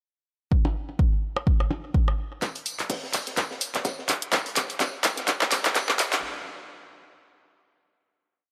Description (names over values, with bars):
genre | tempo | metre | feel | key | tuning
techno | 126 BPM | 4/4 | swing 57% on 16ths | none | none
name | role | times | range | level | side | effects
electronic kick drum | drums | 0.5-5.9 s | none | -26 LUFS | equal | high-pass filter on kick, high-pass filter on room
percussion blips | percussion | 0.7-2.2 s | none | -33 LUFS | equal | digital delay
crunchy breakbeat drum kit | drums | 2.4-6.2 s | hi-hat, snare drum, tambourine | -37 LUFS | equal | sidechain pumping on hats, high-pass filter on hats, high-pass filter on snare, sidechain pumping on perc, high-pass filter on perc, high-pass filter on room
punchy analog drum machine | drums | 2.4-6.2 s | handclaps, hi-hat | -27 LUFS | equal | none
room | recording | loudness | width
light reverb, small room ambience | high-pass filter | -26 LUFS | mono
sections
0.5-2.4 intro; 2.4-6.2 build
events
build-up 2.4-6.2; drum fill 2.4-6.2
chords
none